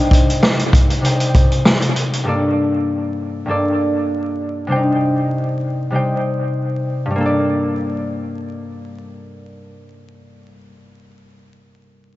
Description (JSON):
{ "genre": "hip hop, boom-bap hip-hop", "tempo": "98 BPM", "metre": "4/4", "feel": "swing 55% on 16ths", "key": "G minor", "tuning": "A4 = 440 Hz", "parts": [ { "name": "concert harp", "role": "accompaniment", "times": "0.0-11.0 s", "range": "G2 to G5", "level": "-18 LUFS", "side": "equal", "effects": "cassette tape, high-pass filter, low-pass filter, dub echo" }, { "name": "vintage drum kit", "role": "drums", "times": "0.1-2.3 s", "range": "hi-hat, kick drum, rim click, snare drum", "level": "-14 LUFS", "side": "equal", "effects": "dub echo" } ], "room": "light reverb, small room ambience", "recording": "echo-heavy mix, vinyl crackle, nothing above 7.8 kHz", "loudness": "-15 LUFS", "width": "side -16 dB against mid", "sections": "0.0-7.2 A section; 7.2-9.6 B section", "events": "none", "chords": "0.0 Cm; 2.3 Gmadd9", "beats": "0.42 1.03 1.65 | 2.26 2.87 3.48 4.10 | 4.71 5.32 5.93 6.54 | 7.16 7.77 8.38 8.99" }